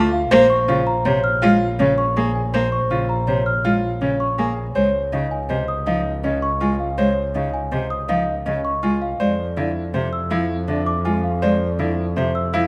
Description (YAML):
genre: classical, minimalist pattern music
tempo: 162 BPM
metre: 6/4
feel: straight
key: unclear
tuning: A4 = 440 Hz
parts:
  - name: marimba with soft mallets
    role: melody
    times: 0.0-12.7 s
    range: C5 to A5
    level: -26 LUFS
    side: equal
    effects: none
  - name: rich cello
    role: accompaniment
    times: 0.0-12.7 s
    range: C3 to Bb3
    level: -25 LUFS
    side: equal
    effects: none
  - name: bright baby grand piano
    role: arpeggios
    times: 0.0-12.7 s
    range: Db4 to C5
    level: -28 LUFS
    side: equal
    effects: none
  - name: rich double bass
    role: bass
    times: 0.0-12.7 s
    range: Bb1 to F2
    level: -28 LUFS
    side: equal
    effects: none
  - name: celesta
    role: arpeggios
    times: 0.1-12.6 s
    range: F5 to F6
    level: -28 LUFS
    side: equal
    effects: none
room: moderate scoring stage reverb, RT60 1.8 s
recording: close, detailed microphones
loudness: -20 LUFS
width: mono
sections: 0.0-12.7 A section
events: none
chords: 0.3 Bbm7; 4.8 C#maj7; 9.2 F5